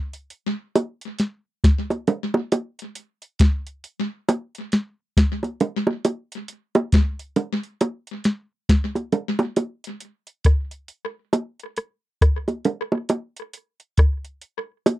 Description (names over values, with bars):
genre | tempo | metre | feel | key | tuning
reggae | 68 BPM | 4/4 | swing 59% on 16ths | none | none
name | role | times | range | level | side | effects
soft vintage rhythm box | drums | 0.1-15.0 s | hi-hat, kick drum, rim click, snare drum | -19 LUFS | equal | overdrive, tape echo
bongos | percussion | 0.8-15.0 s | none | -20 LUFS | right 2 dB | none
room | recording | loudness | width
little or no reverb | dry, close 1970s-style studio recording | -21 LUFS | side -16 dB against mid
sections
0.0-9.6 A section; 9.6-15.0 B section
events
none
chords
none